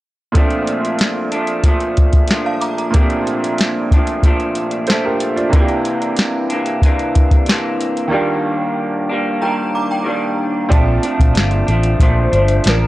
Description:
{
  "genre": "indie pop, bedroom pop",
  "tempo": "93 BPM",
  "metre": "4/4",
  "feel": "straight",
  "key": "Bb major",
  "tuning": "A4 = 440 Hz",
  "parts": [
    { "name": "bright upright piano", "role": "accompaniment", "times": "0.3-12.9 s", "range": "Bb2 to A5", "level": "-22 LUFS", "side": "right 3 dB", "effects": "none" },
    { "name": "electric guitar through a small old amp", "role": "accompaniment", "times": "0.4-12.9 s", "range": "Bb2 to D4", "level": "-19 LUFS", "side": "equal", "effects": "analog chorus, warbly pitch drift" },
    { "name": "soft vintage rhythm box", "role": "drums", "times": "0.4-12.8 s", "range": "hi-hat, kick drum, snare drum", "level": "-14 LUFS", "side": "equal", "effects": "vintage 12-bit sampler grit" },
    { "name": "synth chime", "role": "second line", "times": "2.5-3.7, 9.4-10.7 s", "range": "F5 to D6", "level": "-24 LUFS", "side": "right 2 dB", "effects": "ensemble chorus, analog chorus, analog delay" },
    { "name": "vintage muted fingered electric bass", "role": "bass", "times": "10.7-12.9 s", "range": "G1 to Bb1", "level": "-15 LUFS", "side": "equal", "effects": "none" },
    { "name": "warm velvety synth lead", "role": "melody", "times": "11.4-12.9 s", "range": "F4 to C5", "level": "-20 LUFS", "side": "left 2 dB", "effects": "ensemble chorus" }
  ],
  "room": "little or no reverb",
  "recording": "dry, gritty hardware recording",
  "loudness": "-14 LUFS",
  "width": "side -17 dB against mid",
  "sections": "0.4-10.7 A section; 10.7-12.9 B section",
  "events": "break 8.1-10.7",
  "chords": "0.4 Bbmaj7; 5.5 C9; 8.1 Ebmaj7; 10.7 Bbmaj7"
}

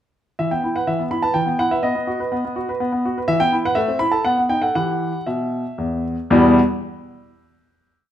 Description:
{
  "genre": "classical-period piano sonatina",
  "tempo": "115-126 BPM",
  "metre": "3/4",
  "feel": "straight",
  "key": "E minor",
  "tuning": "A4 = 440 Hz",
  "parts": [
    { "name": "clear baby grand piano", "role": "solo", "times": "0.4-6.6 s", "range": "E2 to B5", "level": "-17 LUFS", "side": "equal", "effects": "none" }
  ],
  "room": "moderate large studio reverb, RT60 1.2 s",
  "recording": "minimal, uncompressed stereo recording",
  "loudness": "-17 LUFS",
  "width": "side -10 dB against mid",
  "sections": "0.4-6.3 A section; 6.3-7.8 final chord",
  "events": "none",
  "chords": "0.4 E5; 1.8 B; 3.3 Em; 3.8 Am; 4.2 B7; 4.7 Em"
}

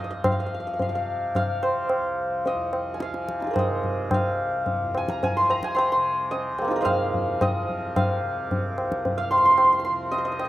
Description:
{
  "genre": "indian classical, Hindustani",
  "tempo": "109 BPM",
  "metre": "7/4",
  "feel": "straight",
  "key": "C raga malkauns",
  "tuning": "A4 = 437 Hz",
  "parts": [
    { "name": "santur", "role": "melody", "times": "0.0-10.5 s", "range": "Ab3 to C6", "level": "-23 LUFS", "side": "equal", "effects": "slapback echo" },
    { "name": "tanpura", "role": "drone", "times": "0.0-10.5 s", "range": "C2 to C3", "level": "-35 LUFS", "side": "right 3 dB", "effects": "none" },
    { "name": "tabla", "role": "percussion", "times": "0.2-10.5 s", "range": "none", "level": "-27 LUFS", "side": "left 1 dB", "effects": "none" }
  ],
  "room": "little or no reverb",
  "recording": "recorded outdoors, with no room sound",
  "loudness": "-22 LUFS",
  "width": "side -15 dB against mid",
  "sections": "0.2-10.5 A section",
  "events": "speeding up 0.0-10.5",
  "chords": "none"
}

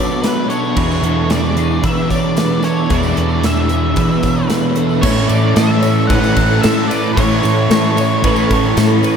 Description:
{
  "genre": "rock, shoegaze and dream pop",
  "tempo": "112 BPM",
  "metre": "4/4",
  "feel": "straight",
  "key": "A major",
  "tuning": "A4 = 439 Hz",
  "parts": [
    { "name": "octave-fuzz lead guitar", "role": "melody", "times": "0.0-8.7 s", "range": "B4 to F#5", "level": "-21 LUFS", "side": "left 1 dB", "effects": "distortion, tape echo" },
    { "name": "twelve-string electric guitar", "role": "arpeggios", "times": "0.0-9.2 s", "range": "G#4 to C#5", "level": "-23 LUFS", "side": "equal", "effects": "analog chorus, tape echo" },
    { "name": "biting overdriven guitar", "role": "riff", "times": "0.0-5.0 s", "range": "B2 to G#4", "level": "-25 LUFS", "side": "right 2 dB", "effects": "spring reverb" },
    { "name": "overdriven semi-hollow guitar", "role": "riff", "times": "0.0-9.2 s", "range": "E2 to F#4", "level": "-18 LUFS", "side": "right 8 dB", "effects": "reverse reverb" },
    { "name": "thick fuzz guitar", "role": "riff", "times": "0.0-9.2 s", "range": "E2 to B3", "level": "-19 LUFS", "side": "left 7 dB", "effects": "distortion, ensemble chorus" },
    { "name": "tambourine", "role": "percussion", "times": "0.1-9.2 s", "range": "none", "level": "-36 LUFS", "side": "right 8 dB", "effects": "none" },
    { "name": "gated 80s drum kit", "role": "drums", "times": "0.2-9.2 s", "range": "crash cymbal, hi-hat, kick drum, ride cymbal, snare drum", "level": "-19 LUFS", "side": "equal", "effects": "none" },
    { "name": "fingered electric bass", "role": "bass", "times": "0.8-9.0 s", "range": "E2 to E3", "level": "-18 LUFS", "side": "equal", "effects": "none" }
  ],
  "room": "wet cathedral reverb, RT60 5.2 s",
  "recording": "dreamy mix soaked in reverb",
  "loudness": "-12 LUFS",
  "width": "side -7 dB against mid",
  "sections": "0.0-5.0 A section; 5.0-9.2 B section",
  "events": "none",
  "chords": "0.0 Bm7; 0.8 E7; 5.0 A"
}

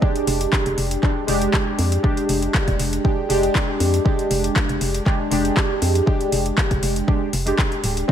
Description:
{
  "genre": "deep house",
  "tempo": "119 BPM",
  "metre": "4/4",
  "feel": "swing 53% on 16ths",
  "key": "F dorian",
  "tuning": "A4 = 441 Hz",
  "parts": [
    { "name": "warm analog keys", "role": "stabs", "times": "0.0-8.1 s", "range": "Ab3 to G4", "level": "-21 LUFS", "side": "right 1 dB", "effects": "chorus, phaser, sidechain pumping, ping-pong delay" },
    { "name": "electronic kick drum", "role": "drums", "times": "0.0-8.1 s", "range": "none", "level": "-20 LUFS", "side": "equal", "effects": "overdrive" },
    { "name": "deep house drum kit", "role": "drums", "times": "0.2-8.1 s", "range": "handclaps, hi-hat", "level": "-26 LUFS", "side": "left 1 dB", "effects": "overdrive" },
    { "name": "organ-like FM bass", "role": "bass", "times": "0.3-8.0 s", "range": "D1 to F2", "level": "-22 LUFS", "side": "equal", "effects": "sidechain pumping" }
  ],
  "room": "little or no reverb",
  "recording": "none",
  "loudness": "-18 LUFS",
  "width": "side -9 dB against mid",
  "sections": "0.0-8.1 A section",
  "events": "none",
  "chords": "0.0 Fm69"
}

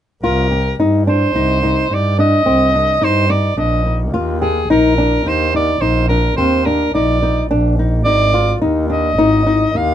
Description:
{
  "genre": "contemporary instrumental, chamber music in an uneven meter",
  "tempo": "107 BPM",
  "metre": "7/4",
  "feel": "straight",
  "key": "unclear",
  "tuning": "A4 = 444 Hz",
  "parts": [
    { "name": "clear soprano saxophone", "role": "melody", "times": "0.2-9.9 s", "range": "Ab4 to F5", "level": "-17 LUFS", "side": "right 1 dB", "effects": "none" },
    { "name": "flamenco guitar", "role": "arpeggios", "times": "0.2-9.9 s", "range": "C4 to G4", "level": "-17 LUFS", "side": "left 2 dB", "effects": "none" },
    { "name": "rich double bass", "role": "bass", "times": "0.2-9.9 s", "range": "Ab1 to G2", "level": "-18 LUFS", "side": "equal", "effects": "none" }
  ],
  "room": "light reverb",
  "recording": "nothing above 10.9 kHz",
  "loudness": "-12 LUFS",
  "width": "side -10 dB against mid",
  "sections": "0.2-9.9 A section",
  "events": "none",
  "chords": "0.2 Eb; 8.1 Ab5"
}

